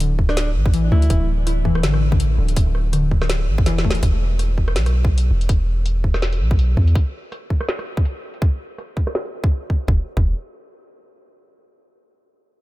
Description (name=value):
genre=half-time drum and bass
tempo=164 BPM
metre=4/4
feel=swing 56% on 16ths, half-time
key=unclear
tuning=A4 = 440 Hz
part: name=warbly dusty pluck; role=arpeggios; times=0.0-4.0 s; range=D3 to E4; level=-25 LUFS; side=left 4 dB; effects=chorus, ping-pong delay
part: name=long sustained 808-style bass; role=bass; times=0.0-6.9, 9.9-10.3 s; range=D1 to E2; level=-18 LUFS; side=equal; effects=none
part: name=drum and bass drum kit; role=drums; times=0.0-9.9 s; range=hi-hat, rim click, snare drum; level=-28 LUFS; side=equal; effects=low-pass filter on snare, low-pass filter on hats, low-pass filter on room
part: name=electronic kick drum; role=drums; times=0.2-10.2 s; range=none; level=-18 LUFS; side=equal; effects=none
part: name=warm alto saxophone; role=melody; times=0.3-1.3 s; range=D4 to E4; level=-30 LUFS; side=right 2 dB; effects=diffuse ambient delay
room=digital ambience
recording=none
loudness=-17 LUFS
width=side -18 dB against mid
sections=0.0-4.0 A section; 4.0-9.9 B section; 9.9-11.3 C section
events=drop 0.0-4.0; drum fill 3.7-4.0; filter sweep on drum 4.0-9.9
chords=0.0 Dsus2; 4.0 E5; 9.9 N.C.